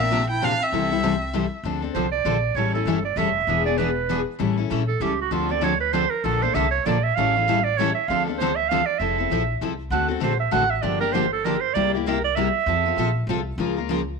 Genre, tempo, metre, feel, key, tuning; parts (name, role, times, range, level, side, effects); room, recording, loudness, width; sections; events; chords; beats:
acoustic string swing (jazz manouche); 196 BPM; 3/4; swing 59% on 8ths; D minor, F major from 9.0 s; A4 = 439 Hz
warm violin; melody; 0.0-1.5 s; E5 to G5; -24 LUFS; equal
clear clarinet; second line; 0.0-13.3 s; C4 to F#5; -23 LUFS; right 9 dB
picked steel-string acoustic guitar; accompaniment; 0.0-14.0 s; C3 to Bb4; -26 LUFS; left 14 dB
upright bass; bass; 0.0-14.2 s; E1 to F2; -28 LUFS; left 1 dB
picked steel-string acoustic guitar; accompaniment; 0.1-14.0 s; C3 to C5; -30 LUFS; right 10 dB
moderate echo chamber reverb, RT60 1.3 s, small room ambience; 1960s-style stereo with parts hard left and right; -20 LUFS; side -4 dB against mid
0.0-1.6 A section; 1.6-9.0 B section; 9.0-14.2 B section
clarinet solo 1.6-14.2
0.0 Bbadd9; 0.7 C6; 1.6 Dm7; 2.6 A7; 3.5 E7; 4.4 A7; 5.3 Dm7; 6.2 Bbmaj7; 7.2 A7b13; 8.1 Dm7; 9.0 Fmaj7; 9.9 D7; 10.8 Gm7; 11.7 C7; 12.7 F; 13.6 Db6
0.10 0.40 | 0.71 1.02 1.32 | 1.63 1.94 2.25 | 2.55 2.86 3.17 | 3.48 3.78 4.09 | 4.40 4.70 5.01 | 5.32 5.62 5.93 | 6.24 6.54 6.85 | 7.16 7.46 7.77 | 8.07 8.38 8.69 | 8.99 9.30 9.61 | 9.91 10.22 10.52 | 10.83 11.14 11.44 | 11.75 12.05 12.36 | 12.67 12.97 13.28 | 13.58 13.89